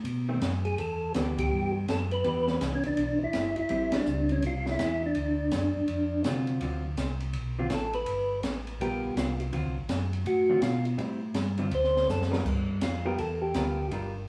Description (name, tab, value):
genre	soul jazz organ trio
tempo	164 BPM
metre	4/4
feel	swing 64% on 8ths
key	unclear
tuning	A4 = 440 Hz
part	mellow tonewheel organ	bass	0.0-14.3 s	G1 to C3	-34 LUFS	equal	stopped rotary speaker
part	open jazz drum kit	drums	0.0-14.0 s	crash cymbal, hi-hat, kick drum, ride cymbal, snare drum	-37 LUFS	equal	none
part	vintage hollow-body jazz guitar	accompaniment	0.3-14.1 s	D3 to A#4	-38 LUFS	equal	none
part	percussive tonewheel organ	melody	0.6-13.9 s	C#4 to C5	-31 LUFS	equal	slow rotary speaker
room	moderate stone room reverb, RT60 1.4 s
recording	band playing live in one room, studio ambience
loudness	-29 LUFS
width	mono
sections	0.0-6.6 A section; 6.6-14.3 B section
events	band accent 1.3, 3.9; tonewheel organ solo 6.6-14.3; drum fill 12.1-12.5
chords	0.1 B7b9; 0.8 Em7; 3.7 A7#9; 5.2 D7#9; 8.1 G7#9; 9.5 D7#9; 11.0 Am7; 11.7 D7#9; 12.5 G7#9